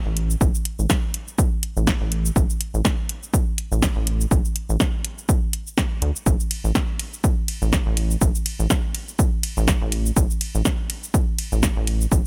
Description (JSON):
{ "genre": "minimal techno", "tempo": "123 BPM", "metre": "4/4", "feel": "swing 56% on 16ths", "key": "unclear", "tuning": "A4 = 440 Hz", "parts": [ { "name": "rubbery square bass", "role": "bass", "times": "0.1-12.2 s", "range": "A1 to D2", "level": "-24 LUFS", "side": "equal", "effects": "sidechain pumping" }, { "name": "punchy analog drum machine", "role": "drums", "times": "0.2-12.2 s", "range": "hi-hat, ride cymbal, shaker, snare drum", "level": "-28 LUFS", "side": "equal", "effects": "small room ambience" }, { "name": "electronic kick drum", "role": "drums", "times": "0.4-12.2 s", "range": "none", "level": "-24 LUFS", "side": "equal", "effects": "small room ambience" } ], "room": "little or no reverb", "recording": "none", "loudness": "-22 LUFS", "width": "mono", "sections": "0.0-12.3 A section", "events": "none", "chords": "none", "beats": "| 0.41 0.90 1.39 1.87 | 2.36 2.85 3.34 3.82 | 4.31 4.80 5.29 5.78 | 6.26 6.75 7.24 7.73 | 8.21 8.70 9.19 9.68 | 10.16 10.65 11.14 11.63 | 12.12" }